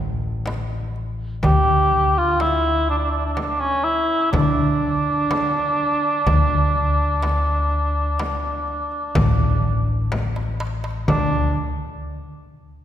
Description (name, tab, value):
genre	Arabic maqam ensemble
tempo	124 BPM (eighths)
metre	10/8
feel	straight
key	unclear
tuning	A4 = 440 Hz
part	upright bass	bass	0.0-11.5 s	A1 to D3	-22 LUFS	equal	none
part	darbuka	percussion	0.5-11.5 s	none	-27 LUFS	equal	none
part	frame drum	percussion	0.5-11.5 s	none	-28 LUFS	equal	none
part	dark cor anglais	melody	1.4-11.5 s	C#4 to G4	-20 LUFS	equal	none
room	wet concert hall reverb, RT60 2.2 s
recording	recorded in a church or concert hall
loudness	-18 LUFS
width	side -10 dB against mid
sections	0.0-11.1 A section; 11.1-12.8 B section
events	drum fill 10.1-11.1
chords	none